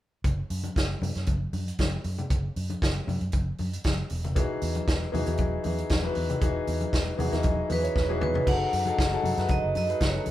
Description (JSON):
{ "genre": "disco", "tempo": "117 BPM", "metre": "4/4", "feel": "straight", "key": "unclear", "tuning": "A4 = 441 Hz", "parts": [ { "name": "vintage muted fingered electric bass", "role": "bass", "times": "0.2-10.3 s", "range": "E1 to F#2", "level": "-30 LUFS", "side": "right 1 dB", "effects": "none" }, { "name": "vintage drum kit", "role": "drums", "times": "0.2-10.3 s", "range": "crash cymbal, hi-hat, kick drum, snare drum, toms", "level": "-28 LUFS", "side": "equal", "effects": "none" }, { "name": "congas", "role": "percussion", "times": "0.2-10.3 s", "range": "none", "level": "-35 LUFS", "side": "left 3 dB", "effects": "none" }, { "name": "clear grand piano", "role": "accompaniment", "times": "4.4-10.3 s", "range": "E3 to F#5", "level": "-30 LUFS", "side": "left 3 dB", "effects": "none" }, { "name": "vibraphone with hard mallets", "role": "melody", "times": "7.7-10.3 s", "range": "B4 to F#5", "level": "-28 LUFS", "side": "right 1 dB", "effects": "none" } ], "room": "wet studio reverb, RT60 0.8 s", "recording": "band playing live in one room", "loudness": "-25 LUFS", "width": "side -14 dB against mid", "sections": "0.2-8.5 A section; 8.5-10.3 B section", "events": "grand piano fill 6.9-8.5; drum fill 8.0-8.5", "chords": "0.2 N.C.; 4.1 Emaj9; 8.5 F#m69", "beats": "| 0.24 0.76 1.27 1.79 | 2.30 2.82 3.33 3.85 | 4.36 4.88 5.39 5.90 | 6.42 6.93 7.44 7.96 | 8.47 8.98 9.50 10.01" }